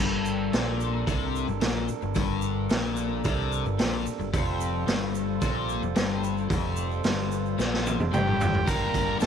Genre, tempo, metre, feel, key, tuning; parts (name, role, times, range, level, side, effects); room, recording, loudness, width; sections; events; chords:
psychedelic rock; 111 BPM; 4/4; straight; G minor; A4 = 439 Hz
pedal harmonium; sustained chords; 0.0-9.3 s; G3 to G5; -34 LUFS; right 14 dB
crunchy overdriven guitar; riff; 0.0-9.3 s; F2 to G4; -29 LUFS; left 10 dB; flanger
modern bright picked electric bass; bass; 0.0-9.3 s; F1 to C2; -32 LUFS; right 2 dB
egg shaker; percussion; 0.3-9.3 s; -46 LUFS; right 18 dB
raw garage drum kit; drums; 0.5-9.3 s; hi-hat, kick drum, snare drum, toms; -28 LUFS; right 2 dB
combo organ; melody; 8.1-9.3 s; G4 to Bb4; -27 LUFS; right 2 dB
light reverb, small room ambience; 1960s-style stereo with parts hard left and right; -24 LUFS; side -8 dB against mid
0.0-8.7 A section
drum fill 7.6-8.7
0.0 Gmadd9; 4.3 Fadd9; 8.7 Gm7